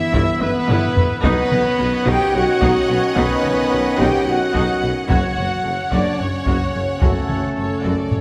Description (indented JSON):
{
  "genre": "cinematic, epic orchestral film score",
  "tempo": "218 BPM (eighths)",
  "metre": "7/8",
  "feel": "straight",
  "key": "unclear",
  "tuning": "A4 = 440 Hz",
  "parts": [
    { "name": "rich chamber violin section", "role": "melody", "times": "0.0-8.2 s", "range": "A4 to G5", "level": "-31 LUFS", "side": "equal", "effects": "none" },
    { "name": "clear symphonic violin section", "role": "second line", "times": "0.0-8.2 s", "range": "C#5 to F#5", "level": "-32 LUFS", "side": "equal", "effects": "none" },
    { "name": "rich symphonic viola section", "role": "accompaniment", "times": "0.0-8.2 s", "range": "D#4 to E5", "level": "-30 LUFS", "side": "equal", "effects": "none" },
    { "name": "dark French horn section", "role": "sustained chords", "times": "0.0-8.2 s", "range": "A3 to G4", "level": "-24 LUFS", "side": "equal", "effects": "none" },
    { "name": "dark trombone section", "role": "sustained chords", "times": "0.0-8.2 s", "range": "C#3 to C#4", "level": "-28 LUFS", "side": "equal", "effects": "none" },
    { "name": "dark trumpet section", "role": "stabs", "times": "0.0-8.2 s", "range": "A4 to G5", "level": "-28 LUFS", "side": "equal", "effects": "none" },
    { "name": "mellow tuba", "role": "bass", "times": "0.1-8.2 s", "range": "F#1 to B1", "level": "-29 LUFS", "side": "equal", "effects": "none" },
    { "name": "rich symphonic cello section", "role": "bass", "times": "0.1-8.2 s", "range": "F#2 to B2", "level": "-28 LUFS", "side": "equal", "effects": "none" },
    { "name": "warm symphonic double bass section", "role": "bass", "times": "0.1-8.2 s", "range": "F#1 to B1", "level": "-30 LUFS", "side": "equal", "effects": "none" },
    { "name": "taiko ensemble", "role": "drums", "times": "0.1-8.2 s", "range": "none", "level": "-25 LUFS", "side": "equal", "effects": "none" }
  ],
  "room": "wet scoring stage reverb, RT60 1.8 s",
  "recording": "none",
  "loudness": "-18 LUFS",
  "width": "mono",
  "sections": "0.0-8.2 A section",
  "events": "drum fill 0.4-1.2",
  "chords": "0.0 Em/G; 1.2 Badd9; 5.1 F#m"
}